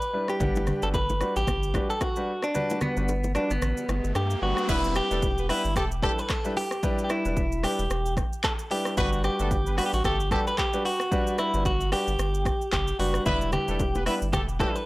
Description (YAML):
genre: afrobeats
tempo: 112 BPM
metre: 4/4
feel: swing 58% on 16ths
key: E minor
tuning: A4 = 439 Hz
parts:
  - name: direct-recorded clean electric guitar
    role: melody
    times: 0.0-14.9 s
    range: B3 to B4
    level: -28 LUFS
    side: equal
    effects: spring reverb
  - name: deep house drum kit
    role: drums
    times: 0.0-14.9 s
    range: crash cymbal, handclaps, hi-hat, kick drum, rim click, shaker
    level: -30 LUFS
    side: equal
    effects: none
  - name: clear grand piano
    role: accompaniment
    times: 0.1-14.8 s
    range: G3 to F#5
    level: -31 LUFS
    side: equal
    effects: none
  - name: round analog bass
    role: bass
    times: 0.4-14.6 s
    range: E1 to G2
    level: -28 LUFS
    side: equal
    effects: none
  - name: congas and bongos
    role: percussion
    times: 0.4-4.3, 13.3-14.8 s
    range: none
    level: -33 LUFS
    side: left 1 dB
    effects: none
  - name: riser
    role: sound effects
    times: 3.3-4.7 s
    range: none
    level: -37 LUFS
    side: equal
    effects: none
  - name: warm horn section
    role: second line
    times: 4.7-14.7 s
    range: G3 to B4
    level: -34 LUFS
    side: equal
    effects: analog delay
room: little or no reverb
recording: dry, gritty hardware recording, transformer saturation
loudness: -24 LUFS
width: side -20 dB against mid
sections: 0.0-4.7 A section; 4.7-14.9 B section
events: kick muted 2.5-4.7; riser 3.3-4.7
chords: 0.4 Gmaj7; 4.7 Em7; 9.0 Gmaj7; 13.3 Em7